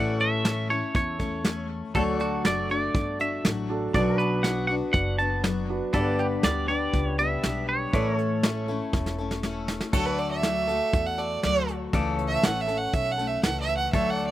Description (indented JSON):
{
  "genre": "honky-tonk and classic country",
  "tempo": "120 BPM",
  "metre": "4/4",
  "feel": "straight",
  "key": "D major",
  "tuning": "A4 = 440 Hz",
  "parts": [
    { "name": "twangy electric guitar", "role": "melody", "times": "0.0-9.4 s", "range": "F#4 to A5", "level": "-28 LUFS", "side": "right 2 dB", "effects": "none" },
    { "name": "picked steel-string acoustic guitar", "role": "accompaniment", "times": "0.0-14.3 s", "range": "G2 to A4", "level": "-30 LUFS", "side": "left 5 dB", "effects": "slapback echo" },
    { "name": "pedal steel guitar", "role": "sustained chords", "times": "0.0-14.3 s", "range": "A4 to D5", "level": "-35 LUFS", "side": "left 1 dB", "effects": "lush chorus" },
    { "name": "upright bass", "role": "bass", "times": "0.0-14.3 s", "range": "E1 to E2", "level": "-31 LUFS", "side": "equal", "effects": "none" },
    { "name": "soft brush drum kit", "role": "drums", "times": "0.2-14.3 s", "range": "crash cymbal, hi-hat, kick drum, snare drum", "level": "-26 LUFS", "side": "equal", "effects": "none" },
    { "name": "warm baby grand piano", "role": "accompaniment", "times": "1.9-9.9 s", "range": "D4 to C#5", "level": "-33 LUFS", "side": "right 5 dB", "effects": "none" },
    { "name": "clear fiddle", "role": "second line", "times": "9.9-14.3 s", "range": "A4 to F#5", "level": "-26 LUFS", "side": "right 4 dB", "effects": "none" }
  ],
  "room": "little or no reverb",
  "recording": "recorded outdoors, with no room sound",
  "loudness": "-23 LUFS",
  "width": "side -14 dB against mid",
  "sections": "0.0-9.9 A section; 9.9-14.3 B section",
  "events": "drum fill 8.9-9.9; fiddle solo 9.9-14.3",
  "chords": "0.0 A; 1.9 D; 3.9 Bm; 5.9 G; 7.9 A; 9.9 D; 11.9 A"
}